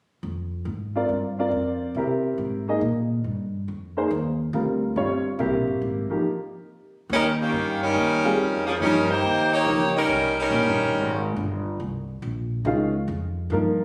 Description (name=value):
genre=jazz, big band swing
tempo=140 BPM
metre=4/4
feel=swing 67% on 8ths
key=Eb mixolydian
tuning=A4 = 440 Hz
part: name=upright bass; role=bass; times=0.2-13.8 s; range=Eb1 to C3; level=-31 LUFS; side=equal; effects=none
part: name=warm upright piano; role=accompaniment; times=1.0-9.9, 12.7-13.8 s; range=Eb3 to Eb5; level=-27 LUFS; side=equal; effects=none
part: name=clear saxophone section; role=melody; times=7.1-11.2 s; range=Eb3 to Db5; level=-23 LUFS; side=equal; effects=none
room=wet large studio reverb, RT60 1.4 s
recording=recorded on a phone in the room, studio reverb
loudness=-24 LUFS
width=mono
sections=0.2-7.1 A section; 7.1-13.8 B section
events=break 6.2-7.1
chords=0.2 Fm; 1.1 Gm7; 2.0 C7; 2.8 Gm; 3.7 Fm7; 4.5 Gm7; 5.4 C7; 6.2 N.C.; 7.1 Eb7